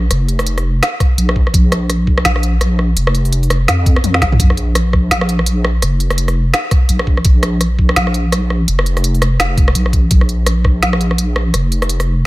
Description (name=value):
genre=half-time drum and bass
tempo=168 BPM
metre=4/4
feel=swing 59% on 16ths, half-time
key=unclear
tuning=A4 = 444 Hz
part: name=deep soft wobble bass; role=bass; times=0.0-12.2 s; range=F1 to F2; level=-14 LUFS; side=equal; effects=chorus
part: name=organic electronic drum kit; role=drums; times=0.1-12.1 s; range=hi-hat, rim click, snare drum, toms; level=-18 LUFS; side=equal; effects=none
part: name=electronic kick drum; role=drums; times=1.0-10.7 s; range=none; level=-12 LUFS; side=equal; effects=none
room=digital ambience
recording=none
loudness=-12 LUFS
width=side -19 dB against mid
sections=0.0-12.3 A section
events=drum fill 4.0-4.4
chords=none